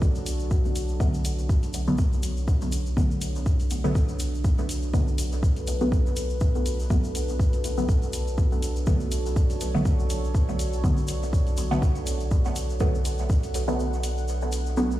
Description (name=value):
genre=dub techno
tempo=122 BPM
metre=4/4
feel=swing 56% on 16ths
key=B minor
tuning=A4 = 440 Hz
part: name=deep dark ambient pad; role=sustained chords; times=0.0-15.0 s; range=D4 to F#5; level=-34 LUFS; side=right 2 dB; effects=chorus, built-in reverb, sidechain pumping
part: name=filtered dub chord stab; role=stabs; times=0.0-15.0 s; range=D3 to B3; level=-30 LUFS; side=equal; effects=phaser, sidechain pumping, dub echo
part: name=warm sub bass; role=bass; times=0.0-15.0 s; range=B1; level=-28 LUFS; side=equal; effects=sidechain pumping
part: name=electronic kick drum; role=drums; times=0.0-13.4 s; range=none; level=-22 LUFS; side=equal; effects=none
part: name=tube shaker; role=percussion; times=0.0-15.0 s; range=none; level=-39 LUFS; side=left 2 dB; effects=none
part: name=electronic hi-hat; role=drums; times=0.3-14.6 s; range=none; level=-38 LUFS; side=equal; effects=none
room=light reverb, digital ambience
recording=played on a big sound system in a bare room, large studio reverb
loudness=-22 LUFS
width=side -14 dB against mid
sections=0.0-15.0 A section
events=kick drops out 13.8-15.0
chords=0.0 Bm7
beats=| 0.02 0.51 1.00 1.49 | 1.99 2.48 2.97 3.46 | 3.95 4.44 4.94 5.43 | 5.92 6.41 6.90 7.39 | 7.89 8.38 8.87 9.36 | 9.85 10.35 10.84 11.33 | 11.82 12.31 12.80 13.30 | 13.79 14.28 14.77